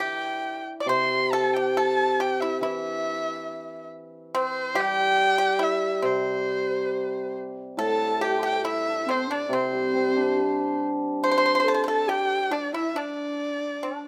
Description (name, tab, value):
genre	chinese traditional, Chinese chamber ensemble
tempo	70 BPM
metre	2/4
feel	rubato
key	C gong mode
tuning	A4 = 435 Hz
part	dark erhu	melody	0.0-14.1 s	C5 to D6	-29 LUFS	equal	none
part	pipa	second line	0.0-14.1 s	C4 to D5	-31 LUFS	equal	none
part	hammered dulcimer	accompaniment	0.0-12.1 s	A2 to G4	-30 LUFS	equal	none
part	breathy mellow low xiao	second line	7.8-14.1 s	C4 to C6	-32 LUFS	equal	none
room	light reverb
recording	close, detailed microphones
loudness	-25 LUFS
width	mono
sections	0.0-7.8 A section; 7.8-14.1 B section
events	none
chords	none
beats	| 0.88 1.76 | 2.62 3.48 | 4.33 5.18 | 6.04 6.91 | 7.79 8.65 | 9.51 10.38 | 11.23 12.08 | 12.95 13.82